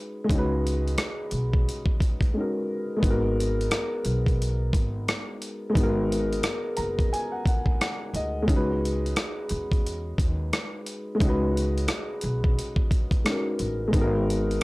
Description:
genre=lo-fi hip hop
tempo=88 BPM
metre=4/4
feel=swing 61% on 16ths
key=G# minor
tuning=A4 = 440 Hz
part: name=warm upright piano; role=accompaniment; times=0.0-14.6 s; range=G#3 to A#5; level=-28 LUFS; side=equal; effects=cassette tape, low-pass filter
part: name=upright bass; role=bass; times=0.3-14.6 s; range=F#1 to E2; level=-28 LUFS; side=equal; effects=none
part: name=dusty soul sampler-style drum kit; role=drums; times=0.3-14.6 s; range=hi-hat, kick drum, rim click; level=-25 LUFS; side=equal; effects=none
room=light reverb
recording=dry, gritty hardware recording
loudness=-23 LUFS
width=side -22 dB against mid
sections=0.0-3.0 A section; 3.0-14.6 A section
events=break 2.3-3.0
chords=0.0 C#7sus4; 3.0 G#m9; 8.5 C#7sus4; 13.9 G#m9

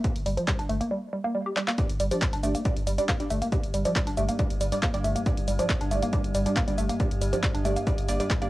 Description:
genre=driving peak-time techno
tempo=138 BPM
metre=4/4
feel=straight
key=G minor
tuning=A4 = 440 Hz
part: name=electronic kick drum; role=drums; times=0.0-8.4 s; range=none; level=-28 LUFS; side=equal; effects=studio reverb, cassette tape
part: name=punchy analog drum machine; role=drums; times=0.0-8.5 s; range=handclaps, hi-hat, shaker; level=-33 LUFS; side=equal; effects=overdrive, sidechain pumping on hats, studio reverb, cassette tape, sidechain pumping on perc
part: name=saturated sub bass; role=bass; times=0.2-8.5 s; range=G1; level=-31 LUFS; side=equal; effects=tube saturation, sidechain pumping, low-pass filter
part: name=woody wave-folded pluck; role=riff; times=0.3-8.5 s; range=F3 to G4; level=-29 LUFS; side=equal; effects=chorus, tube saturation, sidechain pumping, cassette tape, analog delay
part: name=filtered dub chord stab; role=stabs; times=1.8-8.5 s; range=G3 to D5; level=-32 LUFS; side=right 2 dB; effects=phaser, lush chorus, cassette tape, sidechain pumping, analog delay
part: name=metallic inharmonic drone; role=drone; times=3.0-8.5 s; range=G2 to G3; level=-35 LUFS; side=left 1 dB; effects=chorus, built-in reverb, sidechain pumping, cassette tape
room=moderate booth ambience, RT60 0.2 s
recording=home recording on cassette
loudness=-24 LUFS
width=side -17 dB against mid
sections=0.0-1.8 A section; 1.8-8.5 B section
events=drum fill 1.6; drop 1.8-8.5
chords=0.0 G5

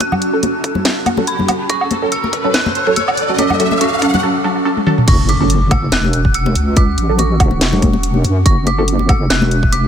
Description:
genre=deep dubstep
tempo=142 BPM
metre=4/4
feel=swing 55% on 16ths, half-time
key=F# minor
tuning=A4 = 444 Hz
part: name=dark detuned synth bell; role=melody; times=0.0-9.9 s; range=B5 to F#6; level=-21 LUFS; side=equal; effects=chorus, dub echo
part: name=granular cloud pad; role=sustained chords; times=0.0-9.9 s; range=C#4 to A5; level=-25 LUFS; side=right 1 dB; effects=built-in reverb
part: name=electronic kick drum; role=drums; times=0.0-9.7 s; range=none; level=-14 LUFS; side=equal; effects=high-pass filter on kick
part: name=garage drum kit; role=drums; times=0.0-9.8 s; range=crash cymbal, hi-hat, snare drum, toms, woodblock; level=-19 LUFS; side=equal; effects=none
part: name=congas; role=percussion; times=0.0-9.8 s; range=none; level=-22 LUFS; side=left 4 dB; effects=dub echo
part: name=riser and impact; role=sound effects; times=0.3-6.8 s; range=none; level=-21 LUFS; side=equal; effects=none
part: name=filtered dub chord stab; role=stabs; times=0.3-9.0 s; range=F#3 to A4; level=-19 LUFS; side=right 2 dB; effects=phaser, lush chorus, cassette tape, dub echo
part: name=deep soft wobble bass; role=bass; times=5.1-9.9 s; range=E1 to F#2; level=-15 LUFS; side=equal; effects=chorus
room=light reverb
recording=none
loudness=-12 LUFS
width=side -8 dB against mid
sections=0.0-5.1 A section; 5.1-9.9 B section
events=build-up 0.0-5.1; filter sweep on synth stab 0.0-5.1; riser 0.3-4.2; drum fill 4.8-5.1; drop 5.1-9.9; impact 5.1-6.8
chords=0.0 F#m

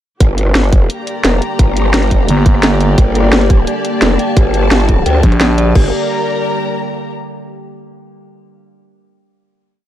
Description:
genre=dark technical drum and bass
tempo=173 BPM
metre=4/4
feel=straight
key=G minor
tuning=A4 = 437 Hz
part: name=metallic inharmonic drone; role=sustained chords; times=0.9-5.9 s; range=D3 to G4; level=-21 LUFS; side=equal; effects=chorus, built-in reverb, vintage 12-bit sampler grit, sidechain pumping
part: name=growl bass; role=bass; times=0.2-5.9 s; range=F1 to D2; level=-14 LUFS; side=equal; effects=chorus, overdrive, sidechain pumping
part: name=drum and bass drum kit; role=drums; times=0.2-5.8 s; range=crash cymbal, hi-hat, rim click, snare drum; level=-16 LUFS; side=equal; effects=none
part: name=electronic kick drum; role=drums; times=0.2-5.8 s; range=none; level=-10 LUFS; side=equal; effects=none
part: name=warm studio string section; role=texture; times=0.2-7.1 s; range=Bb3 to Bb5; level=-20 LUFS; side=left 2 dB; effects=sidechain pumping
part: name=growling FM bass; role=bass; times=2.3-3.0, 5.2-5.7 s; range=G1 to Bb1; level=-12 LUFS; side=equal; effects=tube saturation
part: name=dark detuned synth bell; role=arpeggios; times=3.2-5.9 s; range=G4 to G5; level=-22 LUFS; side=equal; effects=chorus, sidechain pumping, tape echo
room=little or no reverb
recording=none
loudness=-10 LUFS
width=side -12 dB against mid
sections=0.2-5.8 drop; 5.8-7.1 final chord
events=drop 0.2-5.8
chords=0.2 Gm

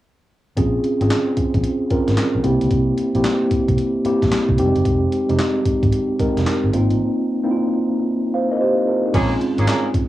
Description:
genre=R&B, new jack swing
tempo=112 BPM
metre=4/4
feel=swing 65% on 16ths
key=Bb dorian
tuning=A4 = 438 Hz
part: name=mellow tine electric piano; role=accompaniment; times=0.6-10.1 s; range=G3 to F5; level=-18 LUFS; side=equal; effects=medium stereo tremolo, cassette tape
part: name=vintage muted fingered electric bass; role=bass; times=0.6-10.0 s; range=F1 to Db2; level=-21 LUFS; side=equal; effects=none
part: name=boom bap sampler-style drum kit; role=drums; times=0.6-10.1 s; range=crash cymbal, handclaps, hi-hat, kick drum, snare drum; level=-23 LUFS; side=equal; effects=cassette tape
part: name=warm horn section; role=stabs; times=9.1-9.9 s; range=Bb3 to Ab4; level=-22 LUFS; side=right 1 dB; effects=cassette tape
room=moderate booth ambience, RT60 0.2 s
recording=home recording on cassette, small room ambience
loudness=-16 LUFS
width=side -15 dB against mid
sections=0.6-9.1 A section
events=none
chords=0.6 Bbm7; 2.4 C7; 4.6 Fm7; 6.7 Ab6 (rootless); 9.1 Bbm7

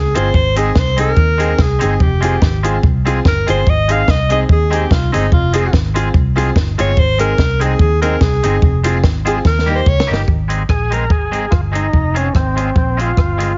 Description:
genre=ska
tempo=145 BPM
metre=4/4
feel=swing 54% on 8ths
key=Ab major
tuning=A4 = 439 Hz
part: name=bright alto saxophone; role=melody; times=0.0-10.1 s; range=Eb4 to F5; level=-20 LUFS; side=equal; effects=none
part: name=vintage muted fingered electric bass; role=bass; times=0.0-13.5 s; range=F1 to Eb2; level=-19 LUFS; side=equal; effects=none
part: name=twangy electric guitar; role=accompaniment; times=0.1-13.5 s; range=G3 to Ab4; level=-26 LUFS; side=equal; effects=analog delay
part: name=bright upright piano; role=stabs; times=0.1-10.2 s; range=Bb3 to Ab4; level=-24 LUFS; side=equal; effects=none
part: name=compact cocktail drum kit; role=drums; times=0.2-13.5 s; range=hi-hat, kick drum, rim click, snare drum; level=-17 LUFS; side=equal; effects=none
part: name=overdriven tonewheel organ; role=melody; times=10.7-13.6 s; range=C4 to Bb4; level=-22 LUFS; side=equal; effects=analog delay
room=light reverb, studio reverb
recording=heavily compressed radio sound, multiband compression, nothing above 7.5 kHz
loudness=-14 LUFS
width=mono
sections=0.0-10.3 A section; 10.3-13.6 B section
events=alto saxophone solo 0.0-10.3; drum fill 9.4-10.3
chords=0.4 Ab; 2.0 Fm; 3.7 Ab; 5.3 Fm; 7.0 Ab; 8.6 Fm; 9.4 Eb; 10.3 Ab; 11.9 Fm

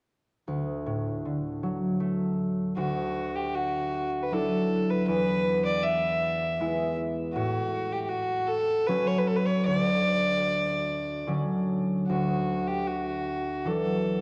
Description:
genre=celtic folk, Celtic slow air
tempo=78 BPM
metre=3/4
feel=rubato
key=D major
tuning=A4 = 440 Hz
part: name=concert harp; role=accompaniment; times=0.5-14.2 s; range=D2 to E4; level=-30 LUFS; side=equal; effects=none
part: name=rich fiddle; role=melody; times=2.8-14.2 s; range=F#4 to E5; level=-30 LUFS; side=equal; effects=none
room=wet church reverb, RT60 3.2 s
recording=worn, warbling old tape, cassette tape, warbly pitch drift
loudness=-28 LUFS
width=mono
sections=0.5-2.8 A section; 2.8-12.1 B section; 12.1-14.2 B section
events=none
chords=0.5 D; 2.8 Dadd9; 5.1 E; 7.4 A6; 9.7 Dmaj7; 12.1 Dadd9

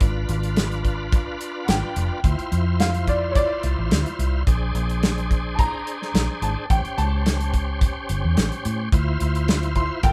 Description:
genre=straight-eighth soul blues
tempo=108 BPM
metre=4/4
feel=straight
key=D minor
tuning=A4 = 440 Hz
part: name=bright tonewheel organ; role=accompaniment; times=0.0-10.1 s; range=Bb3 to C5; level=-32 LUFS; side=equal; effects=slow rotary speaker, overdrive, chorus vibrato
part: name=vintage muted fingered electric bass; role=bass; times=0.0-10.1 s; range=E#1 to A2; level=-26 LUFS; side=equal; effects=none
part: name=damped 70s drum kit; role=drums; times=0.0-10.1 s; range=hi-hat, kick drum, snare drum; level=-24 LUFS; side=equal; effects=none
part: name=clear upright piano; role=second line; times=1.6-10.1 s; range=C#5 to C6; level=-30 LUFS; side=equal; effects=none
room=moderate studio reverb, RT60 0.6 s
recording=band playing live in one room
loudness=-22 LUFS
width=mono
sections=0.0-10.1 A section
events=upright piano solo 0.0-10.1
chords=0.0 G#dim7; 2.2 Dm7; 4.5 Bb7; 6.7 A7#9; 8.9 Dm7

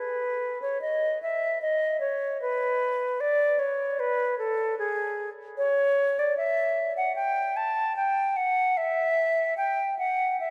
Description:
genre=classical, baroque-style fantasia for unaccompanied flute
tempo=75 BPM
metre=4/4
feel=rubato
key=unclear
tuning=A4 = 440 Hz
part: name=concert flute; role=solo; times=0.0-10.5 s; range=G#4 to A5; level=-27 LUFS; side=equal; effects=none
room=wet church reverb, RT60 3.6 s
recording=dark, warm production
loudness=-27 LUFS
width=mono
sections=0.0-10.5 A section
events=none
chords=none

